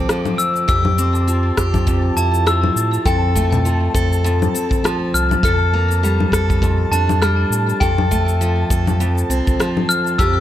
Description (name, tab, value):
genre	folktronica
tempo	101 BPM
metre	4/4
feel	swing 56% on 16ths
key	F major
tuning	A4 = 441 Hz
part	picked steel-string acoustic guitar	arpeggios	0.0-10.4 s	F2 to A4	-21 LUFS	equal	digital delay
part	warm sub bass	bass	0.0-10.4 s	C2 to A2	-18 LUFS	equal	none
part	flickering grainy texture	texture	0.0-10.4 s	A5 to D6	-29 LUFS	right 2 dB	built-in reverb, plate reverb
part	electronic rim click, cabasa and congas	drums	0.1-10.3 s	none	-22 LUFS	left 4 dB	overdrive
part	glockenspiel with hard plastic mallets	second line	0.4-10.4 s	G5 to F6	-22 LUFS	left 3 dB	digital delay, plate reverb
part	kick drum	drums	0.7-10.3 s	none	-22 LUFS	equal	none
room	light reverb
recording	none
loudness	-14 LUFS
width	side -12 dB against mid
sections	0.0-10.4 A section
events	none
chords	0.0 F; 0.7 C/F; 3.1 F; 5.4 Gmadd9/F; 7.8 F